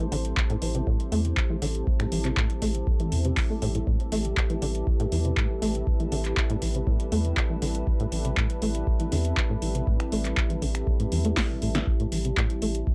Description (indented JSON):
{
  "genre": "acid house",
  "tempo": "120 BPM",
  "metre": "4/4",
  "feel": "straight",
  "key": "A minor",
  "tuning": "A4 = 441 Hz",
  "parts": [
    { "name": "dark analog pad", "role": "sustained chords", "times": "0.0-12.9 s", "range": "G3 to C5", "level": "-37 LUFS", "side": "equal", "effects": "chorus, sidechain pumping" },
    { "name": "acid bass, saw", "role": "riff", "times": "0.0-12.7 s", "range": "A2 to A3", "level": "-32 LUFS", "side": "equal", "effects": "tube saturation, ensemble chorus, sidechain pumping, analog delay" },
    { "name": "electro analog drum machine", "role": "drums", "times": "0.0-12.8 s", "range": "finger snaps, handclaps, hi-hat, snare drum", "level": "-34 LUFS", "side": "equal", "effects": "none" },
    { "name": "warbly tape-like pad", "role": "texture", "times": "0.0-12.9 s", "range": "C4 to A5", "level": "-39 LUFS", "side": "equal", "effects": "chorus, built-in reverb, sidechain pumping" },
    { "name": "round analog bass", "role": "bass", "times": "0.1-12.8 s", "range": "A1 to E2", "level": "-30 LUFS", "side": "equal", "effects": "transformer saturation, sidechain pumping" },
    { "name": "electronic kick drum", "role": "drums", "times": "0.4-12.9 s", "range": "none", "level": "-29 LUFS", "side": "equal", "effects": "none" }
  ],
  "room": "little or no reverb",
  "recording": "dry, gritty hardware recording, transformer saturation, cassette tape",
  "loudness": "-26 LUFS",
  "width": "mono",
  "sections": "0.0-12.9 A section",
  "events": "filter sweep on acid bass 0.0-12.9; drum fill 11.4-11.9",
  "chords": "0.0 Am7"
}